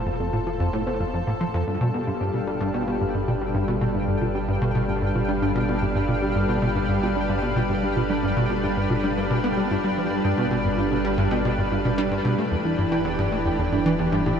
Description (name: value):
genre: ambient, sequencer-driven space music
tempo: 112 BPM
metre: 4/4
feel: straight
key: unclear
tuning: A4 = 440 Hz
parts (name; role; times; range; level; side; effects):
- lush unison pad; sustained chords; 0.0-14.4 s; E3 to F5; -25 LUFS; left 1 dB; chorus
- warm sub bass; bass; 0.0-14.4 s; E1 to G1; -33 LUFS; equal; none
- soft round pluck; arpeggios; 0.1-14.3 s; D4 to C6; -33 LUFS; right 4 dB; none
- plucky analog bass; riff; 0.1-14.3 s; E2 to B3; -24 LUFS; equal; lush chorus, tape echo
- pulsing gated texture; texture; 1.7-14.4 s; G5; -35 LUFS; equal; chorus, built-in reverb
room: moderate huge ambient reverb, RT60 8.2 s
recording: none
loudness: -21 LUFS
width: side -7 dB against mid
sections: 0.0-1.7 A section; 1.7-14.4 A section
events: none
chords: 0.0 F; 1.7 G7; 12.4 Em7